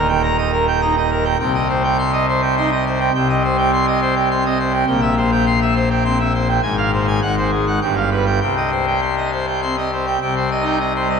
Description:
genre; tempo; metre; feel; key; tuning
classical, organ toccata; 103 BPM; 3/4; straight; C minor from 3.1 s; A4 = 438 Hz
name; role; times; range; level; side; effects
pipe organ, full organ; solo; 0.0-11.2 s; Eb1 to C6; -15 LUFS; equal; none
room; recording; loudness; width
wet church reverb, RT60 3.1 s; none; -15 LUFS; side -6 dB against mid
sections
0.0-10.2 A section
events
none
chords
0.0 Eb; 1.4 Cm; 4.9 C7/Bb; 6.6 Fm/Ab; 7.2 Ab7; 7.8 G7; 8.4 Cm

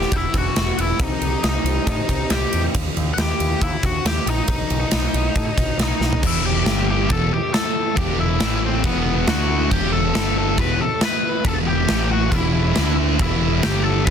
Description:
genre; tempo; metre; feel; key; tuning
quiet-loud alternative rock; 138 BPM; 4/4; straight; E harmonic minor; A4 = 440 Hz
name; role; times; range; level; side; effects
octave-fuzz lead guitar; melody; 0.0-14.1 s; B3 to B5; -24 LUFS; left 4 dB; distortion, tape echo
electric guitar through a small old amp; arpeggios; 0.0-2.7 s; C3 to E4; -28 LUFS; equal; phaser
growling picked electric bass; bass; 0.0-14.1 s; E1 to A2; -23 LUFS; equal; overdrive
huge arena drum kit; drums; 0.0-14.1 s; crash cymbal, kick drum, ride cymbal, snare drum, toms; -21 LUFS; equal; soft clipping on kick, soft clipping on snare
thick fuzz guitar; riff; 6.2-14.1 s; E2 to D4; -22 LUFS; right 1 dB; distortion
room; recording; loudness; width
small room ambience; dense, heavily limited modern master, faint mains hum; -17 LUFS; side -8 dB against mid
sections
0.0-6.2 A section; 6.2-14.1 B section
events
drum fill 6.0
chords
0.0 Em; 1.0 Cm; 2.7 D#; 4.5 B; 6.2 Em; 6.7 G5; 7.1 Em; 8.4 A5; 8.8 E5; 9.3 D5; 9.7 Em; 10.2 G5; 10.6 Em; 11.9 A5; 12.3 E5; 12.8 D5; 13.2 E5; 13.6 G5

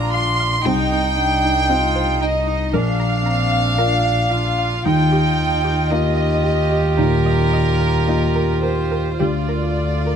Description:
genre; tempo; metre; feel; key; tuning
neoclassical piano and strings; 57 BPM; 4/4; rubato; unclear; A4 = 440 Hz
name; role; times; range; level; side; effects
warm chamber violin section; melody; 0.0-10.2 s; Bb4 to C6; -21 LUFS; equal; none
warm cello; second line; 0.0-10.2 s; C4 to G4; -25 LUFS; right 6 dB; none
dark upright piano; accompaniment; 0.0-10.2 s; Bb1 to Eb5; -24 LUFS; left 5 dB; none
dark viola; accompaniment; 0.0-10.2 s; D4 to F4; -27 LUFS; right 1 dB; none
string-like resonator pluck; arpeggios; 0.0-10.2 s; C4 to Bb5; -28 LUFS; right 5 dB; chorus, slapback echo
dark double bass; bass; 0.0-10.2 s; Bb1 to Eb2; -21 LUFS; equal; none
room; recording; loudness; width
little or no reverb; none; -16 LUFS; side -8 dB against mid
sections
0.0-10.2 A section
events
none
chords
0.0 Bb; 0.7 Cm; 2.7 Bb; 4.8 Ebadd9; 9.2 Gm7/D

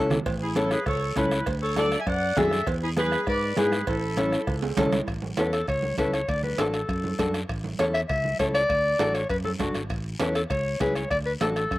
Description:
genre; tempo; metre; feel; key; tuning
latin, cumbia; 199 BPM; 4/4; straight; A major; A4 = 438 Hz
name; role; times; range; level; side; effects
bright saxophone section; melody; 0.0-4.7 s; G#4 to G#5; -31 LUFS; right 3 dB; slapback echo
nylon-string guitar; accompaniment; 0.0-11.6 s; B3 to A4; -26 LUFS; left 2 dB; none
fingered electric bass; bass; 0.0-11.8 s; F#1 to G#2; -30 LUFS; equal; none
bombo; percussion; 0.1-11.8 s; none; -34 LUFS; equal; none
congas; percussion; 0.1-11.8 s; none; -33 LUFS; right 4 dB; none
guiro; percussion; 0.1-11.8 s; none; -40 LUFS; left 3 dB; slapback echo
cowbell and timbales; percussion; 0.3-11.8 s; none; -36 LUFS; right 6 dB; slapback echo
clear clarinet; second line; 0.4-11.8 s; E4 to E5; -27 LUFS; left 1 dB; slapback echo
room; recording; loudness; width
little or no reverb; recorded outdoors, with no room sound; -23 LUFS; side -17 dB against mid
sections
0.0-5.1 A section; 5.1-11.8 B section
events
drum fill 0.0, 4.6-5.1; clarinet solo 5.1-11.8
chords
0.0 A; 1.5 D; 2.7 E7; 3.9 A; 6.3 D; 7.5 A; 8.7 D; 9.9 A; 11.1 D

